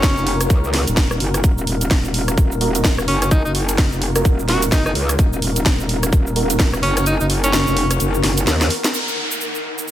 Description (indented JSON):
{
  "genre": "bass house",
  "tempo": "128 BPM",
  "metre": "4/4",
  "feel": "swing 60% on 16ths",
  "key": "Eb minor",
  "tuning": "A4 = 440 Hz",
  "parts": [
    { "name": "edgy alto saxophone", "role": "melody", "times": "0.0-7.9 s", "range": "Db4 to Gb4", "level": "-23 LUFS", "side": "equal", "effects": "ping-pong delay" },
    { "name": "metallic wobble bass", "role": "bass", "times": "0.0-8.7 s", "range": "Eb1 to Eb2", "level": "-20 LUFS", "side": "equal", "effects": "chorus, overdrive, sidechain pumping" },
    { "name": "electronic kick drum", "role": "drums", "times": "0.0-6.7 s", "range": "none", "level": "-15 LUFS", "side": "equal", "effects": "studio reverb" },
    { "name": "garage drum kit", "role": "drums", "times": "0.0-9.9 s", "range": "hi-hat, rim click, shaker, snare drum", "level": "-21 LUFS", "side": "equal", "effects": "studio reverb" },
    { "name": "granular cloud pad", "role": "texture", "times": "0.0-9.9 s", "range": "Eb4 to Gb5", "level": "-27 LUFS", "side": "left 2 dB", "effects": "built-in reverb, sidechain pumping" },
    { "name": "percussive organ stab", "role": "stabs", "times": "2.6-6.7 s", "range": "Bb3 to Bb4", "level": "-26 LUFS", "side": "right 3 dB", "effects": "ensemble chorus, sidechain pumping, ping-pong delay" },
    { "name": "downlifter", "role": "sound effects", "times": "8.9-9.9 s", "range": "none", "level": "-23 LUFS", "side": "equal", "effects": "none" }
  ],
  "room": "light reverb",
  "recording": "none",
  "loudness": "-15 LUFS",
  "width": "side -12 dB against mid",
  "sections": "0.0-8.9 A section",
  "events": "kick drops out 7.1-8.9; drum fill 8.2-8.9",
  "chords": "0.0 Ebm"
}